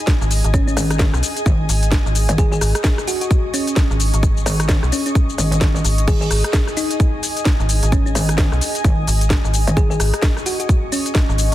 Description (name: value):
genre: bass house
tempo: 130 BPM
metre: 4/4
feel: swing 59% on 16ths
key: unclear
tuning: A4 = 441 Hz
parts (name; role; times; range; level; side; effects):
- ethereal airy pad; texture; 0.0-11.5 s; G#4 to C#6; -27 LUFS; equal; ensemble chorus, built-in reverb, sidechain pumping
- electronic kick drum; drums; 0.1-11.3 s; none; -18 LUFS; equal; none
- garage drum kit; drums; 0.1-11.5 s; crash cymbal, hi-hat, rim click, shaker, snare drum; -22 LUFS; left 1 dB; none
- metallic FM bass; bass; 0.2-11.5 s; G#1 to B1; -17 LUFS; equal; overdrive, sidechain pumping
- thumb-piano-like synth pluck; melody; 0.5-11.1 s; C#4 to G#4; -26 LUFS; equal; chorus, cassette tape, ping-pong delay
- metallic wobble bass; bass; 0.8-10.0 s; G#1; -19 LUFS; equal; distortion, chorus, overdrive, sidechain pumping
room: little or no reverb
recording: dense, heavily limited modern master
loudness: -15 LUFS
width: side -14 dB against mid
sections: 0.0-11.5 A section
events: none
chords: 0.0 G#5